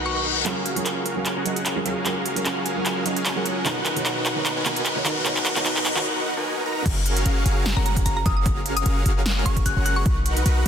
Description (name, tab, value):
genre	future bass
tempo	150 BPM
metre	4/4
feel	swing 54% on 16ths, half-time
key	F# major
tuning	A4 = 440 Hz
part	felt-muted upright piano	accompaniment	0.0-6.1 s	B2 to F#5	-29 LUFS	right 3 dB	sidechain pumping, tape echo
part	dense compressed supersaw	riff	0.0-10.7 s	C#4 to A#5	-26 LUFS	equal	sidechain pumping, low-pass filter, tape echo
part	warm 808-style bass	bass	0.0-10.7 s	F#1 to B1	-23 LUFS	equal	sidechain pumping, high-pass filter
part	reverse cymbal and riser	sound effects	0.0-6.1 s	none	-31 LUFS	left 4 dB	none
part	mallet-like synth pluck	melody	0.1-0.2, 7.8-10.1 s	A#5 to F#6	-29 LUFS	left 1 dB	chorus, sidechain pumping, tape echo
part	big-room dance drum kit	drums	0.5-10.7 s	crash cymbal, handclaps, hi-hat, snare drum	-26 LUFS	equal	overdrive
part	electronic kick drum	drums	6.9-10.1 s	none	-24 LUFS	equal	overdrive
room	light reverb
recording	dense, heavily limited modern master, high-pass filter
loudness	-20 LUFS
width	side -8 dB against mid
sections	0.5-6.9 A section; 6.9-10.7 B section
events	reverse cymbal 0.0-0.5; build-up 0.5-6.9; drum fill 0.5-6.1; riser 0.5-6.1; break 6.1-6.9; drop 6.9-10.7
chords	0.5 F#maj9; 3.7 Bmaj7; 6.9 F#maj9; 10.1 Bmaj7